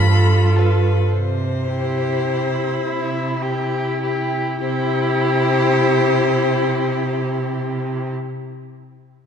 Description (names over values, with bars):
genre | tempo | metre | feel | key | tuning
classical, slow romantic movement for string quartet | 33-41 BPM (dotted quarters) | 6/8 | rubato | C major | A4 = 440 Hz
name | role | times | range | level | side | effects
rich violin | melody | 0.0-8.1 s | B4 to B5 | -26 LUFS | left 5 dB | none
warm violin | second line | 0.0-8.1 s | E4 to A4 | -23 LUFS | left 4 dB | none
rich viola | accompaniment | 0.0-8.1 s | E4 to F4 | -24 LUFS | right 2 dB | none
warm cello | bass | 0.0-8.1 s | G2 to C3 | -20 LUFS | right 2 dB | none
room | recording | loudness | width
wet concert hall reverb, RT60 2.3 s | minimal, uncompressed stereo recording | -17 LUFS | side -7 dB against mid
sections
0.0-4.6 A section; 4.6-7.8 B section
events
slowing down 0.0-4.6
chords
0.0 G9; 1.1 C